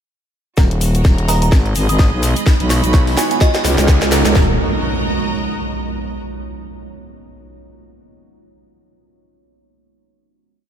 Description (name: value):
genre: bass house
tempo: 127 BPM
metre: 4/4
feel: swing 57% on 16ths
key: Eb minor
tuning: A4 = 440 Hz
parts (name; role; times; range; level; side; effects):
- deep dark ambient pad; sustained chords; 1.9-4.6 s; Eb4 to C#5; -24 LUFS; right 4 dB; chorus, built-in reverb, sidechain pumping
- orchestra-hit-like synth stab; stabs; 0.6-4.5 s; B3 to Eb5; -27 LUFS; right 2 dB; none
- growling FM bass; bass; 0.6-4.6 s; Eb1 to Db2; -16 LUFS; equal; overdrive, sidechain pumping
- garage drum kit; drums; 0.6-4.5 s; kick drum, snare drum; -12 LUFS; equal; none
- garage drum kit; drums; 0.6-4.3 s; hi-hat, snare drum; -22 LUFS; left 1 dB; none
- tube shaker; percussion; 0.6-4.3 s; none; -29 LUFS; left 4 dB; none
- riser and impact; sound effects; 2.2-6.2 s; none; -26 LUFS; equal; none
- rich symphonic string section; texture; 0.6-6.2 s; F4 to Cb6; -26 LUFS; right 2 dB; sidechain pumping
- glassy synth bell; melody; 1.3-3.6 s; Eb5 to Eb6; -25 LUFS; right 2 dB; chorus, diffuse ambient delay
room: light reverb, digital ambience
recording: none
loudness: -13 LUFS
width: side -9 dB against mid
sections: 0.6-4.4 build; 4.4-6.2 final chord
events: build-up 0.6-4.4; drum fill 0.6-4.4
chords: 0.6 Ebm; 1.5 Abm; 2.5 Badd9; 3.4 Db; 4.4 Ebm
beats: | 0.58 1.05 1.52 1.99 | 2.47 2.94 3.41 3.88 | 4.36 4.83 5.30 5.77